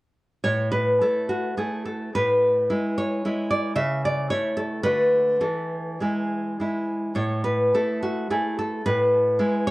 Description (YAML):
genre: romantic piece for solo classical guitar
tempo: 102-112 BPM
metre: 3/4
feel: rubato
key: A major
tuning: A4 = 439 Hz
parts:
  - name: nylon-string guitar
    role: solo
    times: 0.4-9.7 s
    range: A2 to E5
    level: -21 LUFS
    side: equal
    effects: analog delay
room: moderate spring reverb, RT60 1.2 s, small room reverb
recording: worn, warbling old tape, cassette tape, warbly pitch drift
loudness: -21 LUFS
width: side -19 dB against mid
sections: 0.4-9.7 A section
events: none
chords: 0.4 A5; 2.1 E/A; 3.8 A/C#; 4.8 Bm7/D; 5.4 E; 7.2 A5; 8.8 E/A